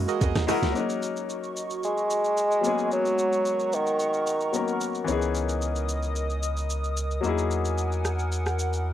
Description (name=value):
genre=amapiano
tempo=111 BPM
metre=4/4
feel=straight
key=G# minor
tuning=A4 = 441 Hz
part: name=warm grand piano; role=accompaniment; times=0.0-8.9 s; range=E3 to A#4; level=-30 LUFS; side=left 7 dB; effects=cassette tape
part: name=hollow soft pad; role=sustained chords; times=0.0-8.9 s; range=E3 to D#6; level=-33 LUFS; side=right 2 dB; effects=chorus, sidechain pumping, cassette tape
part: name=hollow log drum bass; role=bass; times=0.0-0.7 s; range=C#2 to E2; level=-27 LUFS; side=right 1 dB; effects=none
part: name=percussive organ stab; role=stabs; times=0.1-0.7 s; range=F#4 to D#5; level=-31 LUFS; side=right 12 dB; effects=chorus, cassette tape, tape echo
part: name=smooth R&B drum kit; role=drums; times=0.1-8.9 s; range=hi-hat, kick drum, rim click, shaker, snare drum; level=-33 LUFS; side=right 1 dB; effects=none
part: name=bongos and congas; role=percussion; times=0.2-0.6 s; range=none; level=-34 LUFS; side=right 11 dB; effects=none
part: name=mellow bassoon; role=melody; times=1.8-4.8 s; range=D#3 to G#3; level=-24 LUFS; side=right 1 dB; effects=cassette tape, tape echo
part: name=warm sub bass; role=bass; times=5.1-8.9 s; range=C#2 to E2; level=-28 LUFS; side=right 1 dB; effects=none
room=light reverb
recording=home recording on cassette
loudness=-24 LUFS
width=side -11 dB against mid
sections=0.8-8.9 A section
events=none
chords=0.0 Emaj9#11; 0.8 D#m7; 2.6 G#m11; 5.1 C#m9; 7.2 Emaj9#11